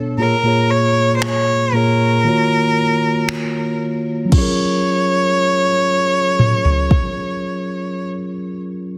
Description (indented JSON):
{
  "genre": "contemporary R&B",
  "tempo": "58 BPM",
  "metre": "4/4",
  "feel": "straight",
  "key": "F# major",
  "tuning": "A4 = 438 Hz",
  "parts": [
    { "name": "mellow tine electric piano", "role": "accompaniment", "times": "0.0-9.0 s", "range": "A#2 to C#5", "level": "-21 LUFS", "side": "equal", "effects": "none" },
    { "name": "rich cello", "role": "melody", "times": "0.2-8.1 s", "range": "A#4 to C#5", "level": "-20 LUFS", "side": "equal", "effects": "digital delay" },
    { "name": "smooth R&B drum kit", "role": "drums", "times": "1.2-7.1 s", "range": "crash cymbal, finger snaps, kick drum, toms", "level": "-19 LUFS", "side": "equal", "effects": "soft clipping on snare" }
  ],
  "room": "light reverb",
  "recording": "dense, heavily limited modern master",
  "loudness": "-17 LUFS",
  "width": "mono",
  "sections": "0.0-4.3 A section; 4.3-8.5 B section",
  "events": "break 2.3-4.3",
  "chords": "0.2 A#m7; 2.3 D#m9; 4.3 F#maj7",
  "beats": "| 0.18 1.22 2.25 3.29 | 4.32 5.36 6.39 7.42"
}